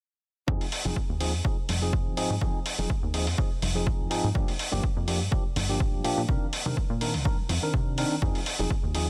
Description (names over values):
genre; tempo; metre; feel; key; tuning
filtered disco house; 124 BPM; 4/4; swing 54% on 16ths; F dorian; A4 = 439 Hz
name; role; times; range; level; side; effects
tine electric piano; accompaniment; 0.5-9.1 s; Eb3 to Bb4; -34 LUFS; equal; phaser, vintage 12-bit sampler grit, sidechain pumping, low-pass filter
plucky analog bass; bass; 0.5-9.1 s; F1 to C3; -32 LUFS; equal; sidechain pumping, low-pass filter
electronic kick drum; drums; 0.5-8.8 s; none; -30 LUFS; equal; none
egg shaker and congas; percussion; 0.5-9.1 s; none; -42 LUFS; equal; none
electronic hi-hat; drums; 0.6-9.1 s; none; -35 LUFS; equal; sidechain pumping on hats
room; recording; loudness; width
little or no reverb; dense, heavily limited modern master; -28 LUFS; mono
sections
0.5-9.1 A section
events
none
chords
0.5 Fm7; 4.3 Gm7; 6.3 Cm9; 8.2 Fm7